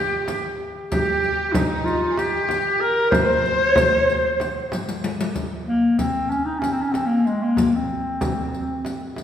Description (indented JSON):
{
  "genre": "Turkish makam ensemble",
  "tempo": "189 BPM (eighths)",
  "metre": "7/8",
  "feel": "straight",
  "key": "C makam kurdi",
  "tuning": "A4 = 444 Hz",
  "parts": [
    { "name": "breathy clarinet", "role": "melody", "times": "0.0-9.0 s", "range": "Ab3 to C5", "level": "-20 LUFS", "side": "left 1 dB", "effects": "none" },
    { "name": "rich studio violin section", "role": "second line", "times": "0.0-4.7 s", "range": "Eb4 to C5", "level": "-26 LUFS", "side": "equal", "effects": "none" },
    { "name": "frame drum", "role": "percussion", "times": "0.3-9.2 s", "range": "none", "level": "-27 LUFS", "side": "equal", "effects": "none" },
    { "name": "riq", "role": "percussion", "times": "0.3-9.2 s", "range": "none", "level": "-31 LUFS", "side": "left 3 dB", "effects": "none" }
  ],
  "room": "wet scoring stage reverb, RT60 2.1 s",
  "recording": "recorded in a church or concert hall, small room ambience",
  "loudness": "-19 LUFS",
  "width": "side -9 dB against mid",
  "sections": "0.0-5.4 A section; 5.4-9.2 B section",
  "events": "drum fill 4.7-5.4",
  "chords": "none"
}